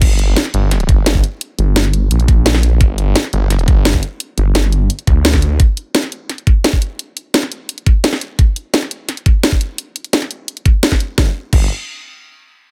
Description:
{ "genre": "dark technical drum and bass", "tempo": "172 BPM", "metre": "4/4", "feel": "straight", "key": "G minor", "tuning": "A4 = 440 Hz", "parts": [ { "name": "snarling distorted saw bass", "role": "bass", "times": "0.0-5.6, 11.2-11.7 s", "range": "G1 to D2", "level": "-16 LUFS", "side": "equal", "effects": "distortion" }, { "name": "drum and bass drum kit", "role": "drums", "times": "0.0-11.6 s", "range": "crash cymbal, hi-hat, snare drum", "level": "-18 LUFS", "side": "equal", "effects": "none" }, { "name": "electronic kick drum", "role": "drums", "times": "0.0-11.6 s", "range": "none", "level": "-14 LUFS", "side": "equal", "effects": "none" } ], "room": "little or no reverb", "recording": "none", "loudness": "-15 LUFS", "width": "mono", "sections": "0.0-11.2 A section; 11.2-12.6 B section", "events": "none", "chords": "none" }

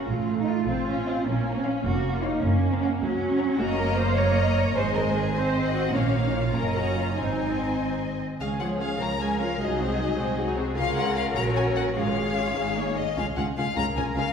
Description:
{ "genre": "quick classical-period movement for string orchestra", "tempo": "102 BPM (dotted quarters)", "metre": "6/8", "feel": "rubato", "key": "Db major from 3.6 s", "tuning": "A4 = 440 Hz", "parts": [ { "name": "rich chamber violin section", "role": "melody", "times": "0.0-14.3 s", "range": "Db5 to Bb5", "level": "-32 LUFS", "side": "left 6 dB", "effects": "none" }, { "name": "warm symphonic violin section", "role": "second line", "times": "0.0-14.2 s", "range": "Eb4 to Gb5", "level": "-32 LUFS", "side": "left 3 dB", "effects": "none" }, { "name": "rich chamber viola section", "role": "accompaniment", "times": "0.0-14.2 s", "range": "F3 to Eb4", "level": "-28 LUFS", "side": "right 1 dB", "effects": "none" }, { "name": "warm chamber cello section", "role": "bass", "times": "0.0-14.3 s", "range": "Bb3 to Eb5", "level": "-29 LUFS", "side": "right 2 dB", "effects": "none" }, { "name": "warm studio double bass section", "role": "bass", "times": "0.1-14.2 s", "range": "F1 to Db2", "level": "-28 LUFS", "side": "right 2 dB", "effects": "none" } ], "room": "wet concert hall reverb, RT60 2.1 s", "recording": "heard from further back in the room", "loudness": "-23 LUFS", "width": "side -7 dB against mid", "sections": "0.0-8.4 A section; 8.4-14.3 B section", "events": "none", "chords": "0.1 F7/A; 1.3 Bbm; 2.4 Gb; 3.6 Ebm7/Gb; 4.8 Ab; 5.9 Bbm; 6.6 Ebm7/Gb; 7.2 Ab; 8.4 Db; 9.6 Ab7/C; 10.8 Db; 11.4 Gb/Bb; 12.0 Db/Ab; 12.6 Ab5; 13.2 Db" }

